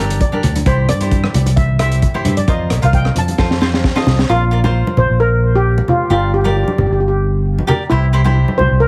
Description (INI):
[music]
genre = calypso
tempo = 132 BPM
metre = 4/4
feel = swing 53% on 16ths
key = Bb major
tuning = A4 = 439 Hz
[part]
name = cavaquinho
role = accompaniment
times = 0.0-8.8 s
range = D4 to Eb5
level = -25 LUFS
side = equal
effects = none
[part]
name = fingered electric bass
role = bass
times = 0.0-8.9 s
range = G1 to G2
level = -17 LUFS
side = equal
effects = none
[part]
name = crunchy breakbeat drum kit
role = drums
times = 0.1-4.3 s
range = hi-hat, kick drum, rim click, snare drum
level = -20 LUFS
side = equal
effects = none
[part]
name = steel pan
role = melody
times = 0.2-8.9 s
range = E4 to A5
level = -21 LUFS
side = equal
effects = tape echo
[part]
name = congas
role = percussion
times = 0.3-8.7 s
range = none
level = -23 LUFS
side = equal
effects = none
[sound]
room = moderate small room reverb, RT60 0.5 s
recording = heavily compressed radio sound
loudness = -15 LUFS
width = mono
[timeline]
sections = 0.0-4.3 A section; 4.3-8.9 B section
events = drum fill 3.4-4.3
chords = 0.0 Gm; 0.7 C; 2.5 Fsus4; 3.4 F; 4.3 Bb5; 6.1 Gm; 7.9 C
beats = 0.21 | 0.66 1.12 1.57 2.02 | 2.48 2.93 3.38 3.84 | 4.29 4.75 5.20 5.65 | 6.10 6.55 7.01 7.46 | 7.91 8.36 8.82